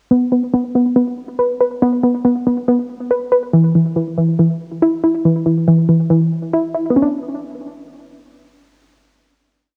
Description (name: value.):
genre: hip hop, trap.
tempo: 140 BPM.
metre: 4/4.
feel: half-time.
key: B minor.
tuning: A4 = 440 Hz.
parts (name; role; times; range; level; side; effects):
warbly dusty pluck; solo; 0.1-9.8 s; E3 to B4; -16 LUFS; equal; chorus, low-pass filter, cassette tape, tape echo.
room: light reverb.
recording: home recording on cassette.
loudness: -16 LUFS.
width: mono.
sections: 0.1-7.0 breakdown; 7.0-9.8 final chord.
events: none.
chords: 0.1 N.C.; 7.0 Bmadd9.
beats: | 0.11 0.53 0.96 1.39 | 1.82 2.25 2.68 3.11 | 3.53 3.96 4.39 4.82 | 5.25 5.68 6.11 6.53 | 6.96 7.39 7.82 8.25 | 8.68 9.11 9.53.